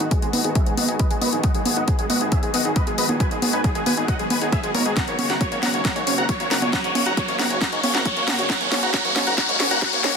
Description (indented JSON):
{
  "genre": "uplifting trance",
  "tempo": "136 BPM",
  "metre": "4/4",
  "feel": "straight",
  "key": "G# minor",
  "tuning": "A4 = 443 Hz",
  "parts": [
    { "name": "big supersaw lead", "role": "melody", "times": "0.0-10.1 s", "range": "G#4 to A#5", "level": "-25 LUFS", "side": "equal", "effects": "sidechain pumping, low-pass filter, dub echo" },
    { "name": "lush unison pad", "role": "sustained chords", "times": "0.0-10.2 s", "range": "C#3 to F#4", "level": "-29 LUFS", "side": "left 1 dB", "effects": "chorus, sidechain pumping" },
    { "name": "analog pluck", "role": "arpeggios", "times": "0.0-10.1 s", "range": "F#3 to F#4", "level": "-29 LUFS", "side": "right 3 dB", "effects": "chorus, sidechain pumping, dub echo" },
    { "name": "fat analog bass", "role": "bass", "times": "0.0-10.1 s", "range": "F#1 to G#2", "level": "-32 LUFS", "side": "equal", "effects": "sidechain pumping, high-pass filter" },
    { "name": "house drum kit", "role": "drums", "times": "0.0-10.1 s", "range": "congas, hi-hat, snare drum", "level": "-24 LUFS", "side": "left 1 dB", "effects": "overdrive" },
    { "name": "riser", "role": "sound effects", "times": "0.7-10.2 s", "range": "none", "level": "-27 LUFS", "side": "left 1 dB", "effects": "none" },
    { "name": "electronic kick drum", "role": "drums", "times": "0.1-9.9 s", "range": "none", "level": "-22 LUFS", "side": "equal", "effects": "overdrive" }
  ],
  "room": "light reverb",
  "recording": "dense, heavily limited modern master, high-pass filter",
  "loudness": "-18 LUFS",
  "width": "side -6 dB against mid",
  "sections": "0.0-10.2 A section",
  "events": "build-up 0.0-10.2; filter sweep on supersaw synth 0.0-10.2; filter sweep on synth pluck 0.0-10.2; filter sweep 0.0-10.2; riser 0.7-10.2; drum fill 5.0-10.2",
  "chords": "0.0 G#m7; 5.0 F#/G#",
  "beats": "0.11 0.56 1.00 | 1.44 1.88 2.32 2.76 | 3.20 3.64 4.08 4.53 | 4.97 5.41 5.85 6.29 | 6.73 7.17 7.61 8.05 | 8.50 8.94 9.38 9.82"
}